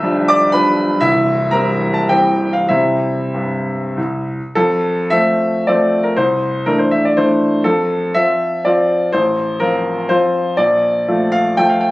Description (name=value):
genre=classical, romantic triple-time dance for piano with dotted rhythms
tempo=90-129 BPM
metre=3/4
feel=rubato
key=F major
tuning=A4 = 443 Hz
part: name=clear grand piano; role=solo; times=0.0-11.9 s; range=B0 to E6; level=-13 LUFS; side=equal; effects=none
room=light reverb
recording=recorded on a phone in the room, club reverb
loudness=-13 LUFS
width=side -19 dB against mid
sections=0.0-4.6 A section; 4.6-11.9 B section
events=none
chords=0.0 G7/B; 1.0 C; 4.6 F; 6.2 C69; 7.6 F; 9.1 F/A; 10.6 Bbmaj7